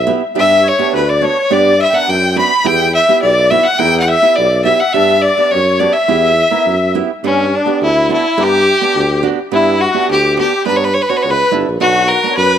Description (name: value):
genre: klezmer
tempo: 105 BPM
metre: 2/4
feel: straight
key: unclear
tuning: A4 = 439 Hz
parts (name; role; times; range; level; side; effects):
- clear violin; melody; 0.0-12.6 s; C#4 to B5; -12 LUFS; equal; none
- musette accordion; second line; 0.0-12.6 s; C#4 to B5; -19 LUFS; left 9 dB; none
- warm tuba; bass; 0.0-12.6 s; G1 to G2; -17 LUFS; equal; none
- flamenco guitar; accompaniment; 0.1-12.4 s; B3 to A#4; -19 LUFS; right 12 dB; none
room: moderate echo chamber reverb, RT60 2.6 s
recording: 1960s-style stereo with parts hard left and right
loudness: -10 LUFS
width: side -9 dB against mid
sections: 0.0-7.2 A section; 7.2-12.6 B section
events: none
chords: 0.4 G; 2.7 Em; 4.9 G; 6.1 Em; 7.2 G; 11.8 Bm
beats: | 0.35 0.93 | 1.50 2.08 | 2.65 3.23 | 3.80 4.37 | 4.95 5.52 | 6.09 6.67 | 7.24 7.81 | 8.38 8.95 | 9.53 10.10 | 10.67 11.24 | 11.81 12.38